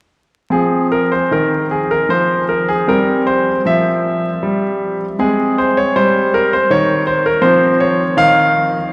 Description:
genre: classical, baroque-style suite movement for grand piano.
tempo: 78 BPM.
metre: 3/4.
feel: uneven beats, rubato.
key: F minor.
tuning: A4 = 440 Hz.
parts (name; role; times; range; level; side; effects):
bright grand piano; solo; 0.5-8.9 s; Eb3 to F5; -15 LUFS; equal; none.
room: wet cathedral reverb, RT60 4.8 s.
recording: recorded in a church or concert hall, vinyl crackle.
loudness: -15 LUFS.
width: mono.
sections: 0.5-8.9 A section.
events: none.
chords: 0.5 F5; 2.9 C; 5.2 Eb6; 7.4 F5.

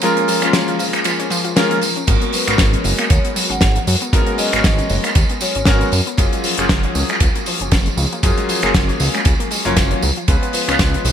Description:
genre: nu-disco, nu disco.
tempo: 117 BPM.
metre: 4/4.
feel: swing 56% on 16ths.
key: G# dorian.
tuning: A4 = 440 Hz.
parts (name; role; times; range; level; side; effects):
bright electric grand piano; accompaniment; 0.0-11.1 s; F#3 to C#5; -20 LUFS; left 1 dB; lush chorus, sidechain pumping, ping-pong delay.
wide unison pluck; arpeggios; 0.0-11.1 s; E#3 to E#4; -27 LUFS; left 2 dB; sidechain pumping, ping-pong delay.
damped 70s drum kit; drums; 0.0-11.1 s; crash cymbal, finger snaps, hi-hat, ride cymbal, snare drum, tambourine; -18 LUFS; equal; gated reverb.
fat analog bass; bass; 2.1-11.1 s; F#1 to F#2; -20 LUFS; equal; none.
electronic kick drum; drums; 2.1-10.9 s; none; -16 LUFS; equal; none.
vibraphone with medium hard mallets; melody; 2.3-5.9, 10.5-10.7 s; B4 to F#5; -27 LUFS; equal; ping-pong delay.
room: light reverb.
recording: bright 1980s-style digital production.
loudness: -14 LUFS.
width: side -9 dB against mid.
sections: 0.0-11.1 A section.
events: break 0.0-2.1.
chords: 0.0 A#m7; 2.1 G#m11; 6.2 F#maj9; 10.0 C#7.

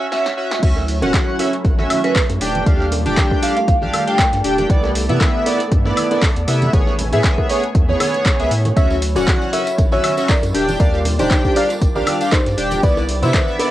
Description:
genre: deep house.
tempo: 118 BPM.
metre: 4/4.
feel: swing 55% on 16ths.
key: unclear.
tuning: A4 = 439 Hz.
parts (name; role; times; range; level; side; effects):
chorused polysynth; stabs; 0.0-13.7 s; B3 to G5; -19 LUFS; equal; vintage 12-bit sampler grit, sidechain pumping, cassette tape, tape echo.
deep house drum kit; drums; 0.1-13.7 s; crash cymbal, handclaps, hi-hat, snare drum, woodblock; -24 LUFS; equal; overdrive, small room ambience, cassette tape.
warm analog pad; sustained chords; 0.6-13.7 s; F#3 to G#5; -29 LUFS; right 1 dB; chorus, sidechain pumping, cassette tape.
round analog bass; bass; 0.6-13.3 s; D1 to C3; -21 LUFS; equal; sidechain pumping, high-pass filter.
breakbeat sampler-style drum kit; drums; 0.6-13.7 s; hi-hat, snare drum, tambourine; -31 LUFS; equal; none.
electronic kick drum; drums; 0.6-13.5 s; none; -16 LUFS; equal; overdrive, small room ambience, cassette tape.
soft string machine; texture; 1.0-13.7 s; A3 to A6; -32 LUFS; left 1 dB; none.
bongos and congas; percussion; 0.8-13.7 s; none; -28 LUFS; right 2 dB; none.
vibraphone with medium hard mallets; melody; 2.0-4.3 s; B4 to G5; -22 LUFS; right 1 dB; cassette tape, tape echo.
soft round pluck; melody; 8.8-13.7 s; Eb4 to E5; -22 LUFS; equal; analog chorus, cassette tape, analog delay.
tambourine; percussion; 8.8-13.6 s; none; -38 LUFS; right 2 dB; none.
room: light reverb.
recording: home recording on cassette, high-pass filter.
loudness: -14 LUFS.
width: side -14 dB against mid.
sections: 0.6-13.7 A section.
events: break 0.0-0.6; drum fill 0.1-0.6; drop 0.6-13.7.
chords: 0.0 A (rootless); 0.6 Dmaj9; 2.4 Ebmaj9; 4.7 Cmaj9; 6.7 Amaj9; 8.8 Dmaj9; 10.5 Ebmaj9; 12.8 Cmaj9.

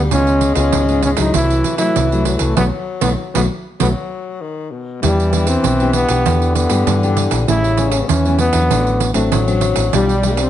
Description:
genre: samba and choro.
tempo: 98 BPM.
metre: 4/4.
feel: straight.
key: E minor.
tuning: A4 = 440 Hz.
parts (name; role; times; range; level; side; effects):
breathy trombone; melody; 0.0-10.5 s; F#3 to E4; -18 LUFS; equal; none.
breathy tenor saxophone; second line; 0.0-10.5 s; B2 to G#3; -23 LUFS; left 5 dB; none.
nylon-string guitar; accompaniment; 0.0-10.5 s; G#2 to G4; -21 LUFS; left 3 dB; none.
hollow-body short-scale fingered electric bass; bass; 0.0-10.5 s; A1 to G2; -18 LUFS; equal; none.
pandeiro; percussion; 0.1-10.5 s; none; -21 LUFS; right 9 dB; none.
room: light reverb.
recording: nothing above 10.7 kHz.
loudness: -13 LUFS.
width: side -11 dB against mid.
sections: 0.0-5.0 A section; 5.0-10.5 B section.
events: band accent 2.6-5.0.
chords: 0.1 C#7; 1.3 F#m7b5/C; 2.6 B5; 5.0 Em7; 6.3 G6; 7.5 A9; 8.7 D7/A; 9.9 G7/B.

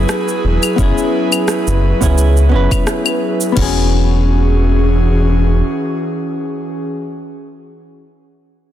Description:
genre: sunset chillout.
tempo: 86 BPM.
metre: 4/4.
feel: swing 55% on 16ths.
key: E major.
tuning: A4 = 441 Hz.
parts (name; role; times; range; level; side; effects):
hollow-body jazz guitar; accompaniment; 0.0-6.9 s; B3 to B4; -19 LUFS; moving between left 8 dB and right 2 dB; auto-pan, digital delay.
airy breathy pad; sustained chords; 0.0-6.9 s; E3 to B4; -19 LUFS; equal; chorus.
round analog bass; bass; 0.0-5.6 s; E1 to C#2; -13 LUFS; equal; none.
drifting glass-harmonics texture; texture; 0.0-3.6 s; G#4 to G#5; -30 LUFS; right 5 dB; chorus, built-in reverb.
smooth R&B drum kit; drums; 0.1-3.7 s; cabasa, claves, crash cymbal, rim click; -21 LUFS; left 2 dB; none.
electronic kick drum; drums; 0.8-3.7 s; none; -17 LUFS; equal; none.
room: light reverb.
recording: dense, heavily limited modern master.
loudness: -12 LUFS.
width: side -12 dB against mid.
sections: 0.0-3.6 A section; 3.6-6.4 B section.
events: none.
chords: 0.0 E69.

